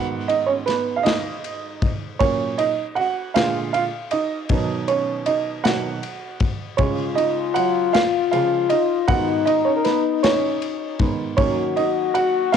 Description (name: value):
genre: six-eight pop ballad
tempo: 52 BPM (dotted quarters)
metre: 6/8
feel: straight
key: unclear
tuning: A4 = 440 Hz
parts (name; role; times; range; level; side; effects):
- warm upright piano; accompaniment; 0.0-12.6 s; Ab2 to Gb5; -21 LUFS; right 6 dB; cassette tape
- modern studio drum kit; drums; 0.3-12.6 s; kick drum, ride cymbal, snare drum; -25 LUFS; left 3 dB; cassette tape
- mellow French horn section; second line; 6.8-12.6 s; Eb4 to Gb4; -21 LUFS; left 13 dB; cassette tape, analog delay
room: light reverb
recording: home recording on cassette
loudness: -18 LUFS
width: side -7 dB against mid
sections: 0.0-12.6 A section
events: upright piano solo 0.0-12.6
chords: 0.0 Abm; 2.2 Ebm/Bb; 3.3 Bb7; 4.5 B; 6.8 Db; 9.1 Abm; 11.4 Ebm